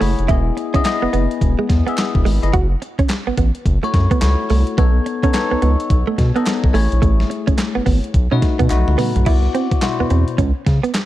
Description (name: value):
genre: R&B, new jack swing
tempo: 107 BPM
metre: 4/4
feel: swing 62% on 16ths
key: E major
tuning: A4 = 438 Hz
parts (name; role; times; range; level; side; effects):
- bell-like tine electric piano; accompaniment; 0.0-10.4 s; B2 to B5; -21 LUFS; left 6 dB; phaser
- direct-recorded clean electric guitar; riff; 0.0-10.9 s; G#3 to F#4; -23 LUFS; right 6 dB; wide subtle chorus
- round analog bass; bass; 0.0-10.8 s; E1 to C#3; -16 LUFS; equal; none
- clean 12-bit digital drum machine; drums; 0.0-11.1 s; crash cymbal, handclaps, hi-hat, kick drum, snare drum, toms; -18 LUFS; equal; overdrive
- group handclap; percussion; 0.9-11.1 s; none; -34 LUFS; right 3 dB; none
room: little or no reverb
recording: dark, warm production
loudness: -14 LUFS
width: side -14 dB against mid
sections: 0.0-9.3 A section; 9.3-11.1 B section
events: tine electric piano fill 0.0; drum fill 8.7-9.3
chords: 0.3 Emaj7; 2.5 F#m7; 4.8 B9; 6.7 Amaj7; 8.1 B7; 9.3 Cmaj9#11; 10.4 C#5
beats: | 0.29 0.85 1.42 1.98 | 2.54 3.10 3.66 4.22 | 4.78 5.34 5.90 6.46 | 7.02 7.58 8.14 8.70 | 9.27 9.83 10.39 10.95